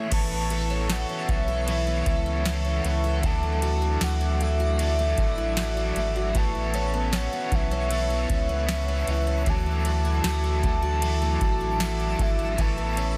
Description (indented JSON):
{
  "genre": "dream pop",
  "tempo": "77 BPM",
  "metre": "4/4",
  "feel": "straight",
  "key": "A major",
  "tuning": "A4 = 442 Hz",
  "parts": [
    { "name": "warbly nostalgic lead", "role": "melody", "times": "0.0-13.2 s", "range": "E5 to A5", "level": "-33 LUFS", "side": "equal", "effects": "chorus, digital delay" },
    { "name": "cranked stack guitar", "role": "accompaniment", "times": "0.0-13.2 s", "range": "D3 to C#5", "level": "-37 LUFS", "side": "equal", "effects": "overdrive, tremolo, analog chorus" },
    { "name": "mellow tonewheel organ", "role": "sustained chords", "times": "0.0-13.2 s", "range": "F#4 to D6", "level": "-37 LUFS", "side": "equal", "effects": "slow rotary speaker" },
    { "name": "picked twelve-string acoustic guitar", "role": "arpeggios", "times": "0.0-13.2 s", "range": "E3 to A4", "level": "-35 LUFS", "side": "equal", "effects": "subtle chorus, digital delay" },
    { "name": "warm sub bass", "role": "bass", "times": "0.1-13.2 s", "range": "G#1 to D2", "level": "-29 LUFS", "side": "equal", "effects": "none" },
    { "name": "booming analog drum machine", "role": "drums", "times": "0.1-13.2 s", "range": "crash cymbal, kick drum, ride cymbal, snare drum, tambourine", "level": "-32 LUFS", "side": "equal", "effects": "none" },
    { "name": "twinkling granular texture", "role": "texture", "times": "1.2-13.2 s", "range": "C#5 to E6", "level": "-46 LUFS", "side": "equal", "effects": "none" }
  ],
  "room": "light reverb",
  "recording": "dense, heavily limited modern master",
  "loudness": "-25 LUFS",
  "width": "mono",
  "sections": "0.1-13.2 A section",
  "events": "none",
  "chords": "0.1 Aadd9; 3.2 Dadd9; 6.3 Aadd9; 9.5 Dadd9; 12.6 Aadd9"
}